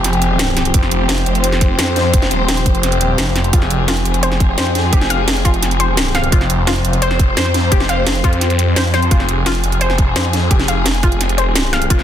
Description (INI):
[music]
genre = dark technical drum and bass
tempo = 172 BPM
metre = 4/4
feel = straight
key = F minor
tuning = A4 = 439 Hz
[part]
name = dark studio string section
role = sustained chords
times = 0.0-12.0 s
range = F3 to C5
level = -20 LUFS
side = left 1 dB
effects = sidechain pumping
[part]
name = phased detuned saw bass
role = bass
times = 0.0-12.0 s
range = Eb1 to F2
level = -17 LUFS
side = equal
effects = phaser, overdrive
[part]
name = drum and bass drum kit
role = drums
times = 0.0-12.0 s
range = hi-hat, snare drum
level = -19 LUFS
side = right 1 dB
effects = overdrive
[part]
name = electronic kick drum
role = drums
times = 0.7-12.0 s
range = none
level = -14 LUFS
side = equal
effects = none
[part]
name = warbly dusty pluck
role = arpeggios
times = 3.5-12.0 s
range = F4 to F5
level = -21 LUFS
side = left 2 dB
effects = chorus, sidechain pumping, dub echo
[sound]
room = light reverb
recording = dense, heavily limited modern master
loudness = -12 LUFS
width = side -10 dB against mid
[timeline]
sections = 0.0-12.0 A section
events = none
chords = 0.0 Fmadd9